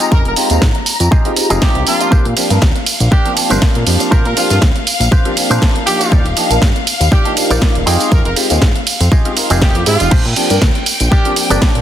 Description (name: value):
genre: filtered disco house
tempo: 120 BPM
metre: 4/4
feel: swing 55% on 16ths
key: Bb mixolydian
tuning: A4 = 440 Hz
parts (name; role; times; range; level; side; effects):
- warm grand piano; accompaniment; 0.0-11.8 s; F3 to G5; -19 LUFS; equal; phaser, sidechain pumping
- warm studio string section; sustained chords; 0.0-11.8 s; F5 to Bb5; -23 LUFS; left 6 dB; sidechain pumping
- electric guitar with an envelope filter; riff; 0.0-11.8 s; D4 to Eb5; -21 LUFS; right 1 dB; sidechain pumping
- house drum kit; drums; 0.0-11.8 s; crash cymbal, hi-hat, ride cymbal, snare drum, tambourine; -17 LUFS; right 2 dB; sidechain pumping on cymbals, sidechain pumping on perc, sidechain pumping on hats
- bright horn section; melody; 0.1-11.3 s; F4 to Bb4; -21 LUFS; right 1 dB; sidechain pumping, digital delay
- fat analog bass; bass; 0.1-11.8 s; Eb1 to Bb2; -15 LUFS; equal; sidechain pumping
- electronic kick drum; drums; 0.1-11.7 s; none; -12 LUFS; equal; none
room: little or no reverb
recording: dense, heavily limited modern master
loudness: -10 LUFS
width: side -11 dB against mid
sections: 0.0-11.8 A section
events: none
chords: 0.0 Fm9; 2.1 Bb69; 6.1 Ebmaj9; 7.9 Fm9; 10.1 Bb69